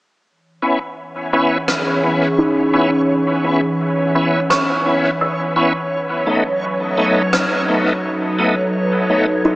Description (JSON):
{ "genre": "ambient dub", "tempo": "85 BPM", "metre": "4/4", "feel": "swing 58% on 16ths", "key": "C# minor", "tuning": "A4 = 441 Hz", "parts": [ { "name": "warbly tape-like pad", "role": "sustained chords", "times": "1.3-9.6 s", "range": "E3 to B4", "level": "-20 LUFS", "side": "equal", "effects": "chorus, built-in reverb, phaser" }, { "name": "backwards swelling texture", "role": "texture", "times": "1.1-9.6 s", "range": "C#5", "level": "-23 LUFS", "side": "right 1 dB", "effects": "built-in reverb" }, { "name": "bright tonewheel organ", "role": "stabs", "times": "0.6-9.3 s", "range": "A3 to E4", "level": "-18 LUFS", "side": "equal", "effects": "chorus vibrato, slow rotary speaker, low-pass filter, dub echo" }, { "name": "rim click", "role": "drums", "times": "1.7-7.5 s", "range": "none", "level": "-22 LUFS", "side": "equal", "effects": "dub echo" }, { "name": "kalimba", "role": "arpeggios", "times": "2.4-9.6 s", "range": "D#4 to E6", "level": "-21 LUFS", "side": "right 1 dB", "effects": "low-pass filter, dub echo" } ], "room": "moderate spring reverb, RT60 2.4 s", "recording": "small speaker sound", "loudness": "-14 LUFS", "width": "side -20 dB against mid", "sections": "0.3-9.6 A section", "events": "filter sweep on ambient pad 0.3-9.6; filter sweep on kalimba 0.3-9.6", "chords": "0.3 C#m7; 5.9 B7" }